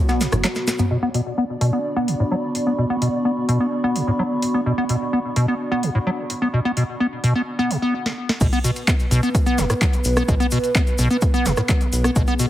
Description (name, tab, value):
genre	acid house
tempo	128 BPM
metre	4/4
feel	straight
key	B minor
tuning	A4 = 438 Hz
part	dark analog pad	sustained chords	0.0-12.5 s	B3 to D5	-28 LUFS	right 1 dB	chorus, sidechain pumping
part	warbly tape-like pad	texture	0.0-7.9 s	B3 to C#6	-27 LUFS	equal	chorus, built-in reverb, sidechain pumping
part	acid bass, square	riff	0.1-12.5 s	A2 to B3	-21 LUFS	equal	analog chorus, sidechain pumping, ping-pong delay
part	booming analog drum machine	drums	0.1-12.5 s	crash cymbal, handclaps, hi-hat, rim click, snare drum, toms	-25 LUFS	equal	studio reverb
part	tube shaker	percussion	0.1-0.9, 8.4-12.5 s	none	-32 LUFS	left 2 dB	none
part	round analog bass	bass	0.3-0.4, 8.4-12.2 s	F#1 to B1	-23 LUFS	equal	tube saturation, sidechain pumping
part	electronic kick drum	drums	8.4-12.3 s	none	-19 LUFS	equal	overdrive, studio reverb
room	light reverb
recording	heavily compressed radio sound, multiband compression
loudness	-18 LUFS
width	side -13 dB against mid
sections	0.9-8.4 A section; 8.4-12.5 B section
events	drum fill 0.6-0.9, 8.1-8.4; drop 8.4-12.5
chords	0.0 B5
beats	0.44 | 0.91 1.38 1.85 2.32 | 2.79 3.25 3.72 4.19 | 4.66 5.13 5.60 6.07 | 6.54 7.00 7.47 7.94 | 8.41 8.88 9.35 9.82 | 10.29 10.75 11.22 11.69 | 12.16